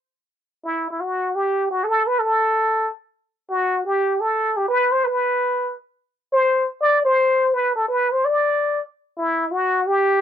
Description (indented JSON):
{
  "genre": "jazz",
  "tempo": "169 BPM",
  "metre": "4/4",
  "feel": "swing 64% on 8ths",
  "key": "G major",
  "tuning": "A4 = 439 Hz",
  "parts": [
    { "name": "trumpet with plunger mute", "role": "solo", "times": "0.7-10.2 s", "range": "E4 to D5", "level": "-18 LUFS", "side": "equal", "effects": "none" }
  ],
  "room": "light reverb",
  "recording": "dry, close 1970s-style studio recording",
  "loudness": "-18 LUFS",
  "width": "side -9 dB against mid",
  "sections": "0.4-10.2 A section",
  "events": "none",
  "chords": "none",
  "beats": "0.05 | 0.40 0.76 1.11 1.47 | 1.82 2.18 2.54 2.89 | 3.25 3.60 3.96 4.31 | 4.67 5.03 5.38 5.74 | 6.09 6.45 6.80 7.16 | 7.51 7.87 8.23 8.58 | 8.94 9.29 9.65 10.00"
}